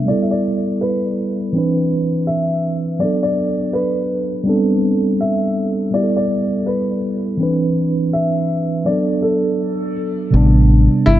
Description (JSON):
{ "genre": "hip hop", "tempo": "82 BPM", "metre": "4/4", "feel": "swing 64% on 16ths", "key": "A dorian", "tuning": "A4 = 442 Hz", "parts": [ { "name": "felt-muted upright piano", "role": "melody", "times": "0.0-11.2 s", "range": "E4 to E5", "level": "-22 LUFS", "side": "left 1 dB", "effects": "diffuse ambient delay" }, { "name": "mellow tine electric piano", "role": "accompaniment", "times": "0.0-11.2 s", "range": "C3 to B4", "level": "-17 LUFS", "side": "right 1 dB", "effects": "medium stereo tremolo, cassette tape" }, { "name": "deep dub fingered electric bass", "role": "bass", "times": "10.3-11.2 s", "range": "G1 to A1", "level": "-12 LUFS", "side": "equal", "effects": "none" } ], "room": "moderate lush hall reverb, RT60 2.5 s", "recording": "dreamy mix soaked in reverb, cassette tape, low-pass filter", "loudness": "-15 LUFS", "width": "side -13 dB against mid", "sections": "0.0-10.3 A section", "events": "filter sweep 0.0-10.3", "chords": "0.1 G69; 1.5 Cmaj9; 3.0 Bm7; 4.5 Am11; 5.9 G69; 7.4 Cmaj9; 8.9 Bm7; 10.3 Am11", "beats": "0.08 0.81 | 1.55 2.28 3.01 3.74 | 4.47 5.21 5.94 6.67 | 7.40 8.13 8.86 9.60 | 10.33 11.06" }